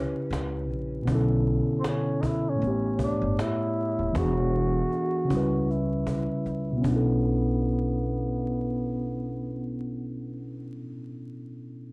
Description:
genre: lo-fi hip hop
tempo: 78 BPM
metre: 4/4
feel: swing 58% on 16ths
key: B minor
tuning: A4 = 439 Hz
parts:
  - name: growling tenor saxophone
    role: melody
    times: 0.0-10.8 s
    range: B3 to F#4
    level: -31 LUFS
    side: equal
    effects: low-pass filter
  - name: mellow tine electric piano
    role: accompaniment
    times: 0.0-11.9 s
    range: A2 to C#5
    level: -27 LUFS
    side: equal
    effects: cassette tape, low-pass filter
  - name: upright bass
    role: bass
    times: 0.0-10.7 s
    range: D#1 to C#2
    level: -30 LUFS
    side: equal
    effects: none
  - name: cajon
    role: drums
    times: 0.3-7.0 s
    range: none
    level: -34 LUFS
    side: equal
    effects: none
room: little or no reverb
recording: dry, gritty hardware recording, vinyl crackle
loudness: -24 LUFS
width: side -28 dB against mid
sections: 0.0-7.2 A section; 7.2-10.3 B section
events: filter sweep 0.0-7.2; drum fill 6.5-7.2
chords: 0.0 C#m7b5; 1.1 Bm11; 2.6 A7; 4.2 E9; 5.3 C#m7b5; 6.8 Bm11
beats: 0.31 | 1.07 1.84 2.61 3.38 | 4.15 4.92 5.69 6.46 | 7.23 8.00 8.77 9.54

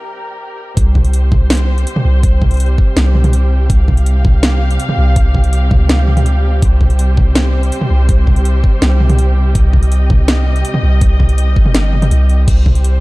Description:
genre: half-time drum and bass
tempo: 164 BPM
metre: 4/4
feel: half-time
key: C minor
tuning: A4 = 442 Hz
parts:
  - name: muted studio string section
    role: sustained chords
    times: 0.0-13.0 s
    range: C3 to F5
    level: -22 LUFS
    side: equal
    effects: sidechain pumping
  - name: long sustained 808-style bass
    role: bass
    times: 0.0-13.0 s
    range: G1 to Db2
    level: -11 LUFS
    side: equal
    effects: high-pass filter
  - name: drum and bass drum kit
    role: drums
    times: 0.8-12.9 s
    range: crash cymbal, hi-hat, snare drum, toms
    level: -18 LUFS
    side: equal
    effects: none
  - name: electronic kick drum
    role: drums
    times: 0.8-12.7 s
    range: none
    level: -12 LUFS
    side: equal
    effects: none
room: little or no reverb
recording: dark, warm production, high-pass filter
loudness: -10 LUFS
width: side -21 dB against mid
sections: 0.8-13.0 A section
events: break 0.0-0.8; drop 0.8-13.0; kick drops out 11.7-12.5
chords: 0.0 C5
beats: 0.04 0.41 | 0.77 1.14 1.50 1.87 | 2.23 2.60 2.97 3.33 | 3.70 4.06 4.43 4.80 | 5.16 5.53 5.89 6.26 | 6.62 6.99 7.36 7.72 | 8.09 8.45 8.82 9.19 | 9.55 9.92 10.28 10.65 | 11.02 11.38 11.75 12.11 | 12.48 12.85

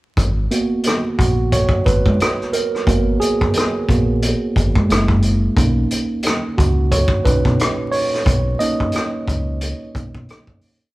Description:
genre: R&B, neo-soul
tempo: 89 BPM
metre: 4/4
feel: swing 56% on 16ths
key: G# minor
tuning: A4 = 440 Hz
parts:
  - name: deep dub fingered electric bass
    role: bass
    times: 0.2-10.3 s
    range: F#1 to B2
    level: -19 LUFS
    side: equal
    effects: none
  - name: crunchy breakbeat drum kit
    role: drums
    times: 0.2-10.8 s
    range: hi-hat, kick drum, rim click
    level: -19 LUFS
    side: equal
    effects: none
  - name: tine electric piano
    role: accompaniment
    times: 0.5-10.9 s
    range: A#2 to D#5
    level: -20 LUFS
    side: right 2 dB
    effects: none
room: light reverb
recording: band playing live in one room, vinyl crackle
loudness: -15 LUFS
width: side -19 dB against mid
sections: 0.2-10.9 A section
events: tine electric piano solo 0.2-10.9; fade-out 8.3-10.9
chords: 0.2 G#m9; 4.9 F#9; 5.6 Bmaj7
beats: | 0.17 0.84 1.52 2.19 | 2.87 3.54 4.21 4.89 | 5.56 6.24 6.91 7.58 | 8.26 8.93 9.61 10.28

